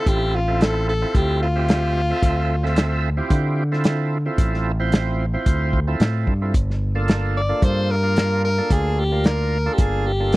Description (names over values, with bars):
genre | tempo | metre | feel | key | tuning
straight-eighth soul blues | 111 BPM | 4/4 | swing 53% on 16ths | D minor | A4 = 440 Hz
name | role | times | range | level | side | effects
breathy tenor saxophone | melody | 0.0-3.0, 7.4-10.4 s | F4 to D5 | -23 LUFS | left 2 dB | none
overdriven tonewheel organ | accompaniment | 0.0-10.4 s | Bb3 to E5 | -26 LUFS | right 3 dB | slow rotary speaker
fingered electric bass | bass | 0.1-10.4 s | G1 to D3 | -21 LUFS | equal | none
warm soul drum kit | drums | 0.1-10.4 s | hi-hat, kick drum, snare drum | -18 LUFS | equal | none
room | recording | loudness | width
small room reverb | dry, close 1970s-style studio recording | -18 LUFS | side -19 dB against mid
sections
0.0-10.4 A section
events
none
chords
0.0 Dm7; 6.5 Gm7